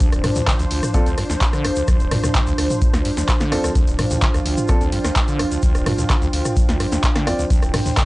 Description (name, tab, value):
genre	acid house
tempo	128 BPM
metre	4/4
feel	straight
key	D minor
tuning	A4 = 439 Hz
part	warm analog pad	sustained chords	0.0-8.1 s	F3 to C5	-28 LUFS	right 1 dB	chorus, sidechain pumping
part	acid bass, saw	riff	0.0-8.0 s	D1 to D3	-24 LUFS	equal	wide subtle chorus, analog delay
part	electronic kick drum	drums	0.0-8.1 s	none	-19 LUFS	equal	none
part	punchy analog drum machine	drums	0.0-8.1 s	handclaps, hi-hat, ride cymbal, rim click, snare drum, toms	-23 LUFS	equal	none
part	tube shaker	percussion	0.0-8.1 s	none	-34 LUFS	left 1 dB	none
part	warbly tape-like pad	texture	0.0-8.1 s	D4 to G5	-25 LUFS	right 1 dB	chorus, built-in reverb, sidechain pumping
part	warm grand piano	stabs	0.9-7.4 s	C4 to D5	-26 LUFS	equal	vintage 12-bit sampler grit, analog delay
room	little or no reverb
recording	dry, gritty hardware recording, transformer saturation, cassette tape, nothing above 10.3 kHz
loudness	-16 LUFS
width	side -20 dB against mid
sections	0.0-8.1 A section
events	none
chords	0.0 Dm7